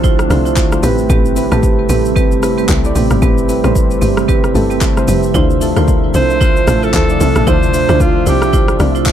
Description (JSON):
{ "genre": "amapiano", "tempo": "113 BPM", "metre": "4/4", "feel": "swing 58% on 16ths", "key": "D minor", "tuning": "A4 = 440 Hz", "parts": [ { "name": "soft electric-piano-like synth keys", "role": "accompaniment", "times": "0.0-9.1 s", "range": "A3 to D5", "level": "-18 LUFS", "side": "left 2 dB", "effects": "chorus" }, { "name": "glassy FM pad", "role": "sustained chords", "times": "0.0-9.1 s", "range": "C3 to E5", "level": "-20 LUFS", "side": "equal", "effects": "ensemble chorus, built-in reverb, sidechain pumping" }, { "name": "marimba with hard mallets", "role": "stabs", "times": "0.0-9.0 s", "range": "C4 to C5", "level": "-19 LUFS", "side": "right 9 dB", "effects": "ping-pong delay" }, { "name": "tight log drum bass", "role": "bass", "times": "0.0-9.1 s", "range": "F1 to D2", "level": "-16 LUFS", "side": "equal", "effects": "none" }, { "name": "deep house drum kit", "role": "drums", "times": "0.0-9.1 s", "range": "handclaps, hi-hat, kick drum, rim click, shaker", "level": "-15 LUFS", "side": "equal", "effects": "none" }, { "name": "breathy alto saxophone", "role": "melody", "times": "6.2-8.8 s", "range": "F4 to C5", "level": "-17 LUFS", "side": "right 1 dB", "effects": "ping-pong delay" } ], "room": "little or no reverb", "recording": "dark, warm production", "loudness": "-10 LUFS", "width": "side -10 dB against mid", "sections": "0.0-9.1 A section", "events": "none", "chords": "0.0 Dm9; 0.8 Am9; 5.3 Dm9" }